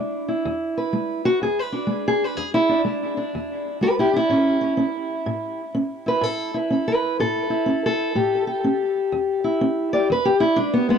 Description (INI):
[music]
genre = acoustic country blues, solo or duo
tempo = 124 BPM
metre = 4/4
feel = swing 64% on 8ths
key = E mixolydian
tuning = A4 = 438 Hz
[part]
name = fingerpicked steel-string acoustic guitar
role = solo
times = 0.0-11.0 s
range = E2 to D5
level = -19 LUFS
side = equal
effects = tape echo
[sound]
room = light reverb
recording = dry, close 1970s-style studio recording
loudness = -20 LUFS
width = side -7 dB against mid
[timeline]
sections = 0.0-11.0 A section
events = steel-string acoustic guitar solo 0.0-11.0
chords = 0.0 E7; 4.3 A7; 10.1 E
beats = | 0.45 0.93 1.41 1.90 | 2.38 2.86 3.35 3.83 | 4.31 4.79 5.28 5.76 | 6.24 6.72 7.21 7.69 | 8.17 8.65 9.13 9.62 | 10.10 10.58